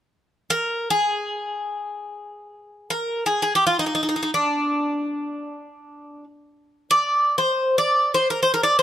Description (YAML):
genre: greek folk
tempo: free time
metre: none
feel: none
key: unclear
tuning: A4 = 439 Hz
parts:
  - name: Greek bouzouki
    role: melody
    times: 0.5-8.8 s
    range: D4 to D5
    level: -20 LUFS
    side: equal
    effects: none
room: little or no reverb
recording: close, detailed microphones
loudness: -20 LUFS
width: side -11 dB against mid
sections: 0.0-8.8 A section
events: none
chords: none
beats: free time